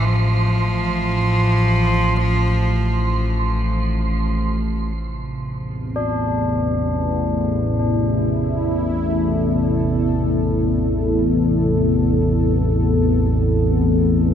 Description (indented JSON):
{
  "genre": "dark ambient drone",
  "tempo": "free time",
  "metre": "none",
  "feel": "none",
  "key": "A minor",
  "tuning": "A4 = 440 Hz",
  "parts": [
    { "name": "bright cello", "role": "melody", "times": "0.0-4.3 s", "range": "F3", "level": "-23 LUFS", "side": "equal", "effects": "analog delay" },
    { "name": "tubular bells", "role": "arpeggios", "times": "0.0-14.3 s", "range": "D4 to E4", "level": "-30 LUFS", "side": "left 5 dB", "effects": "analog delay" },
    { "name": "analog drone", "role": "drone", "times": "0.0-14.3 s", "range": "A1 to E2", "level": "-19 LUFS", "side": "equal", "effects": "chorus" },
    { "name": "wind-like tuned noise texture", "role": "texture", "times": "0.0-5.0 s", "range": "C6", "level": "-30 LUFS", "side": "right 7 dB", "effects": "built-in reverb, analog chorus" },
    { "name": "sweeping resonant pad", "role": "sustained chords", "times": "5.0-14.3 s", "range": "C3 to A4", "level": "-20 LUFS", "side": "left 1 dB", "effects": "chorus" }
  ],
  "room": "light reverb, small room ambience",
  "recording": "none",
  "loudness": "-17 LUFS",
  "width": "side -9 dB against mid",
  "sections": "0.0-5.0 A section; 5.0-14.3 B section",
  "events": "filter sweep on synth drone 0.0-5.0",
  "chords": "0.0 Am; 5.0 Amadd9"
}